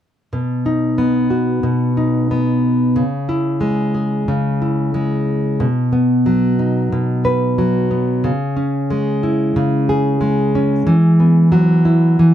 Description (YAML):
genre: pop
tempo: 91 BPM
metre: 4/4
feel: straight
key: B major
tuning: A4 = 442 Hz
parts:
  - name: nylon-string guitar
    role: accompaniment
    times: 0.3-12.3 s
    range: B2 to B4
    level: -14 LUFS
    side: equal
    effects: none
room: light reverb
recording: dark, warm production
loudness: -14 LUFS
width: side -10 dB against mid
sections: 0.3-5.6 A section; 5.6-12.3 B section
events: none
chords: 0.3 B; 3.0 C#m; 5.6 B; 8.2 C#m; 10.9 Eadd9